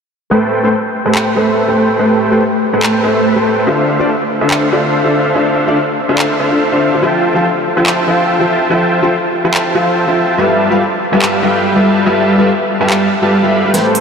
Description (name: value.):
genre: future bass.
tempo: 143 BPM.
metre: 4/4.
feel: swing 55% on 16ths, half-time.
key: A minor.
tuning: A4 = 440 Hz.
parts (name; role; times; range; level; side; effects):
felt-muted upright piano; accompaniment; 0.3-14.0 s; D3 to F5; -15 LUFS; left 2 dB; analog chorus, low-pass filter, ping-pong delay.
dense compressed supersaw; riff; 0.3-14.0 s; G3 to B5; -12 LUFS; right 1 dB; low-pass filter, ping-pong delay.
big-room dance drum kit; drums; 1.2-14.0 s; handclaps, hi-hat, snare drum; -21 LUFS; equal; none.
fat analog bass; bass; 13.7-14.0 s; none; barely audible; none; none.
riser; sound effects; 14.0 s; none; barely audible; none; none.
room: wet huge ambient reverb, RT60 8.8 s.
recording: dreamy mix soaked in reverb.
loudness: -10 LUFS.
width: side -6 dB against mid.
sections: 0.3-13.7 A section.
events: drum fill 13.7.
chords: 0.3 Am9; 3.7 Dm7; 7.0 Fmaj7; 10.4 G13.